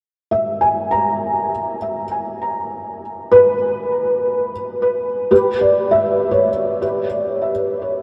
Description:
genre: ambient.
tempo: 60 BPM.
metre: 3/4.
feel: straight.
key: unclear.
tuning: A4 = 440 Hz.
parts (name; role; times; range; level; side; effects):
felt-muted upright piano; solo; 0.3-8.0 s; G4 to A#5; -18 LUFS; equal; ensemble chorus, delay.
room: wet huge ambient reverb, RT60 8.3 s.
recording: dreamy mix soaked in reverb.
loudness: -18 LUFS.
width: mono.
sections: 0.0-8.0 A section.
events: none.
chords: 0.0 E; 5.3 G6.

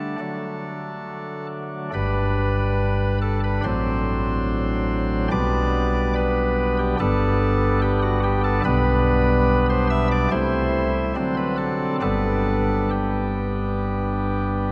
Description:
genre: classical, chorale-style piece for pipe organ.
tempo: 71 BPM.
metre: 4/4.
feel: uneven beats, rubato.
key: G major.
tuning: A4 = 440 Hz.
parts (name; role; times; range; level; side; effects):
chamber organ, cornet; solo; 0.0-14.7 s; G1 to E5; -22 LUFS; equal; none.
room: wet cathedral reverb, RT60 5.0 s.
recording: none.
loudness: -22 LUFS.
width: mono.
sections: 0.0-14.7 A section.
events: none.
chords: 0.2 D; 1.9 G; 3.6 D7/A; 5.3 G/B; 7.0 G; 8.6 G/B; 10.3 Am7/C; 11.2 D7; 12.0 G.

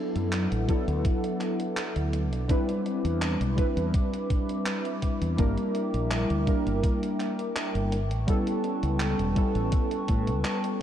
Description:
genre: vaporwave.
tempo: 83 BPM.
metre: 4/4.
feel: straight.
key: D major.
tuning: A4 = 440 Hz.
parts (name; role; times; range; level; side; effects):
warbly lo-fi synth keys; accompaniment; 0.0-10.8 s; F#3 to B4; -28 LUFS; equal; lush chorus, analog delay.
warbly tape-like pad; sustained chords; 0.1-10.8 s; C4 to D6; -37 LUFS; equal; chorus, built-in reverb.
mellow fretless electric bass; bass; 0.2-10.4 s; E1 to A2; -28 LUFS; equal; none.
gated 80s digital drum machine; drums; 0.2-10.8 s; handclaps, hi-hat; -37 LUFS; right 1 dB; gated reverb.
electronic kick drum; drums; 0.7-10.2 s; none; -26 LUFS; equal; none.
room: light reverb.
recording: dark, warm production.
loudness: -25 LUFS.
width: side -10 dB against mid.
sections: 0.0-10.8 A section.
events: none.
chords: 0.0 D69; 2.5 Cmaj9; 5.4 Gm6; 7.9 A9.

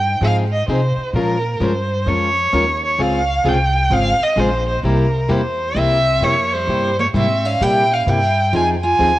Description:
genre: acoustic string swing (jazz manouche).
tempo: 130 BPM.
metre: 4/4.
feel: swing 63% on 8ths.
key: unclear.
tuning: A4 = 440 Hz.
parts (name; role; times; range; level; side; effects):
rich violin; melody; 0.0-9.2 s; Bb4 to Ab5; -18 LUFS; right 1 dB; cassette tape.
upright bass; bass; 0.0-9.2 s; Ab1 to C3; -20 LUFS; equal; none.
picked plugged-in steel-string acoustic guitar; accompaniment; 0.2-9.1 s; C3 to Bb4; -21 LUFS; left 2 dB; cassette tape.
picked steel-string acoustic guitar; second line; 5.8-9.2 s; G3 to F4; -25 LUFS; right 4 dB; cassette tape.
room: light reverb, small room ambience.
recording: home recording on cassette.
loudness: -15 LUFS.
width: side -16 dB against mid.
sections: 0.0-9.2 A section.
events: none.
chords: 0.0 Fm7; 1.1 Bbm7; 3.0 Dbmaj7; 4.8 C7; 8.5 Fm7.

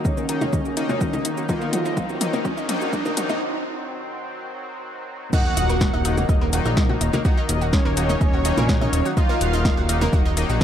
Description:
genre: melodic techno.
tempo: 125 BPM.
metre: 4/4.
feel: straight.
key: Eb dorian.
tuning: A4 = 440 Hz.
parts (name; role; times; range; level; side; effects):
lush unison pad; sustained chords; 0.0-10.6 s; Eb3 to C4; -32 LUFS; equal; chorus, sidechain pumping.
analog pluck; arpeggios; 0.0-10.6 s; Bb3 to Gb5; -30 LUFS; right 2 dB; chorus, sidechain pumping, dub echo.
sync-sweep polysynth; stabs; 0.0-10.6 s; Eb3 to Eb4; -28 LUFS; left 4 dB; chorus, sidechain pumping, dub echo.
fat analog bass; bass; 0.0-10.6 s; Eb1 to Bb1; -25 LUFS; equal; sidechain pumping, high-pass filter.
riser and impact; sound effects; 0.1-7.2 s; none; -32 LUFS; right 1 dB; none.
fat analog lead; melody; 0.1-2.4, 5.3-10.0 s; Db4 to Gb4; -29 LUFS; right 1 dB; wide subtle chorus, sidechain pumping, ping-pong delay.
deep house drum kit; drums; 0.1-10.6 s; congas, crash cymbal, hi-hat, shaker, snare drum, toms; -26 LUFS; left 1 dB; overdrive.
electronic kick drum; drums; 0.1-10.6 s; none; -21 LUFS; equal; overdrive.
big bright polysynth; second line; 5.3-10.0 s; Db5 to Gb5; -30 LUFS; right 2 dB; chorus, cassette tape, sidechain pumping, dub echo.
room: light reverb, digital ambience.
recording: high-pass filter.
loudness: -19 LUFS.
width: side -10 dB against mid.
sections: 0.0-5.3 A section; 5.3-10.6 B section.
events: build-up 0.0-5.3; drum fill 0.0-3.4; filter sweep on analog synth lead 0.0-5.3; filter sweep on analog synth pad 0.0-5.3; riser 0.1-3.4; break 3.4-5.3; drop 5.3-10.6; impact 5.3-7.2.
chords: 0.0 Ebm.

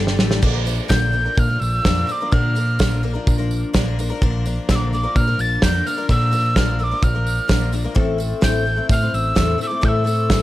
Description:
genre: indie folk with a building arrangement.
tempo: 128 BPM.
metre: 4/4.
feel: straight.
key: unclear.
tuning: A4 = 440 Hz.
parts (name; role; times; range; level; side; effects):
fingerpicked steel-string acoustic guitar; accompaniment; 0.0-2.1 s; G3 to A4; -32 LUFS; left 3 dB; none.
picked twelve-string acoustic guitar; accompaniment; 0.0-10.4 s; G2 to Bb4; -25 LUFS; left 4 dB; none.
hollow-body short-scale picked electric bass; bass; 0.0-10.4 s; G1 to Bb2; -21 LUFS; equal; none.
loose indie drum kit; drums; 0.1-10.4 s; crash cymbal, kick drum, snare drum; -19 LUFS; equal; none.
tambourine; percussion; 0.4-10.4 s; none; -38 LUFS; right 7 dB; none.
breathy mellow wooden whistle; melody; 0.9-10.4 s; D6 to A6; -23 LUFS; right 1 dB; tape echo.
room: small room ambience.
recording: dark, warm production.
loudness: -16 LUFS.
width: side -15 dB against mid.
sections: 0.4-10.4 A section.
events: drum fill 0.0-0.4.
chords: 0.4 Bb; 8.0 Am.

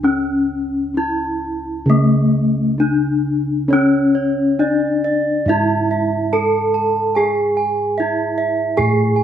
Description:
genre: Javanese gamelan.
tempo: 66-78 BPM.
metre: 4/4.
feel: straight.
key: C# pelog.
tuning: A4 = 440 Hz.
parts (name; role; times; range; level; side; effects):
gamelan-type bronze metallophone; melody; 0.0-9.2 s; A3 to A4; -18 LUFS; left 2 dB; none.
gamelan-type bossed gongs; bass; 0.0-9.2 s; C#2 to G#4; -20 LUFS; equal; none.
gamelan-type bronze metallophone; arpeggios; 3.7-9.2 s; C#5 to A5; -20 LUFS; right 3 dB; none.
room: moderate stone room reverb, RT60 1.1 s.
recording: band playing live in one room.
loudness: -15 LUFS.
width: side -9 dB against mid.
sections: 0.0-9.2 A section.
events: none.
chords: none.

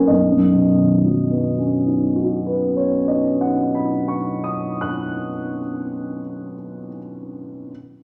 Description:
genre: classical, impressionist solo piano.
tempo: 33 BPM (dotted quarters).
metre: 9/8.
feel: rubato.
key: B major.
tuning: A4 = 438 Hz.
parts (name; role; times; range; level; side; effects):
warm baby grand piano; solo; 0.0-7.7 s; B1 to F#6; -20 LUFS; equal; none.
room: wet recital hall reverb, RT60 1.3 s.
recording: none.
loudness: -20 LUFS.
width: mono.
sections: 0.1-5.5 A section.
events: none.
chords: 0.1 Badd9.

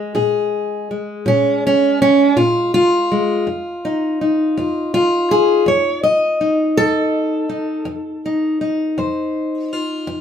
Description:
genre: acoustic country blues, solo or duo.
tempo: 54 BPM (dotted quarters).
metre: 12/8.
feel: straight.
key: unclear.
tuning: A4 = 441 Hz.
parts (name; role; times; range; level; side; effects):
fingerpicked steel-string acoustic guitar; solo; 0.0-10.2 s; F2 to Eb5; -15 LUFS; equal; none.
room: wet studio reverb, RT60 0.5 s.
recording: heard from further back in the room.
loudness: -15 LUFS.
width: side -8 dB against mid.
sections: 0.0-10.2 A section.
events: none.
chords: 0.0 Bb5; 3.5 F7.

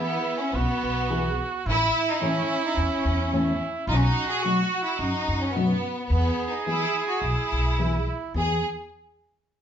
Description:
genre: mexican folk, mariachi.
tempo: 108 BPM.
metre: 4/4.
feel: straight.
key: E major.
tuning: A4 = 440 Hz.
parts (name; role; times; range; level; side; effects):
bright symphonic violin section; melody; 0.0-8.6 s; B3 to G#4; -27 LUFS; equal; none.
bright trumpet; second line; 0.0-8.6 s; E4 to G#4; -29 LUFS; right 4 dB; none.
nylon-string guitar; accompaniment; 0.0-8.6 s; A2 to A4; -27 LUFS; left 2 dB; none.
upright bass; bass; 0.5-8.6 s; A1 to F#2; -26 LUFS; equal; none.
room: moderate large studio reverb, RT60 0.7 s.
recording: band playing live in one room, nothing above 7.8 kHz.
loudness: -22 LUFS.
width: side -8 dB against mid.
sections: 0.0-8.4 A section; 8.4-9.6 B section.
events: none.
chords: 0.0 E; 1.7 A; 3.9 B7; 6.1 E.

